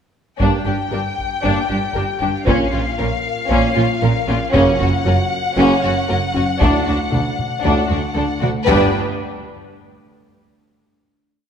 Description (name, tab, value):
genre	cinematic, hybrid orchestral and electronic film score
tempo	116 BPM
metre	4/4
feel	straight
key	G harmonic minor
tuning	A4 = 437 Hz
part	warm symphonic violin section	melody	0.4-9.0 s	F5 to G5	-23 LUFS	left 6 dB	none
part	warm symphonic violin section	second line	0.4-9.0 s	Db4 to B4	-24 LUFS	left 3 dB	none
part	rich symphonic viola section	accompaniment	0.4-9.0 s	Db4 to D4	-23 LUFS	right 1 dB	none
part	dark French horn section	sustained chords	0.4-8.9 s	Db4 to G4	-25 LUFS	left 2 dB	none
part	warm trombone section	sustained chords	0.4-8.9 s	G2 to B3	-25 LUFS	right 3 dB	none
part	harp-like synth pluck	arpeggios	0.4-8.6 s	D3 to Bb4	-26 LUFS	left 1 dB	chorus
part	rich symphonic cello section	bass	0.4-9.0 s	D2 to Bb2	-23 LUFS	right 2 dB	none
part	rich symphonic double bass section	bass	0.4-9.0 s	F#1 to D2	-23 LUFS	right 3 dB	none
part	taiko ensemble	drums	0.4-8.8 s	none	-23 LUFS	left 1 dB	none
room	moderate scoring stage reverb, RT60 2.0 s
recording	none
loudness	-15 LUFS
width	side -8 dB against mid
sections	0.4-8.7 theme; 8.7-10.7 final chord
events	none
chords	0.4 Gm; 2.5 Bbm; 4.5 F#; 6.6 D; 8.7 G5